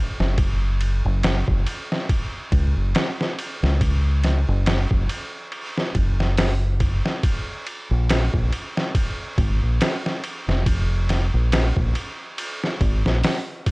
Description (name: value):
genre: trip hop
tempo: 70 BPM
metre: 4/4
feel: swing 57% on 16ths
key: Bb minor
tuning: A4 = 440 Hz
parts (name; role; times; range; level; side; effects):
- deep dub fingered electric bass; bass; 0.2-13.2 s; F1 to Db2; -20 LUFS; equal; none
- trip hop sampler-style drum kit; drums; 0.2-13.7 s; hi-hat, kick drum, ride cymbal, snare drum; -23 LUFS; equal; studio reverb
room: little or no reverb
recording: worn, warbling old tape, cassette tape, warbly pitch drift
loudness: -19 LUFS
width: side -25 dB against mid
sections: 0.0-13.7 A section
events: none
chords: none